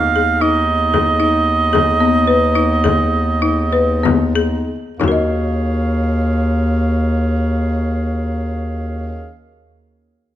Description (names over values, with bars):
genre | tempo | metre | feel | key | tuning
contemporary instrumental, chamber music in an uneven meter | 183-230 BPM (eighths) | 11/8 | straight | Eb minor | A4 = 444 Hz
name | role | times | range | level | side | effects
mellow oboe | melody | 0.0-4.4 s | Eb5 to F5 | -16 LUFS | right 4 dB | none
clear woodwind section | sustained chords | 0.0-9.3 s | Eb3 to F5 | -25 LUFS | right 1 dB | none
folk marimba with medium hard mallets | arpeggios | 0.0-9.5 s | Cb4 to Eb5 | -18 LUFS | left 4 dB | none
mellow bass clarinet | bass | 0.0-9.3 s | Eb2 | -18 LUFS | equal | none
frame drum | percussion | 0.2-5.3 s | none | -23 LUFS | left 4 dB | none
room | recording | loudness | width
moderate recital hall reverb, RT60 1.7 s | close, detailed microphones | -14 LUFS | side -12 dB against mid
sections
0.0-5.0 A section; 5.0-8.6 B section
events
slowing down 0.4-5.0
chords
0.0 Abm/Eb; 5.0 Ebm11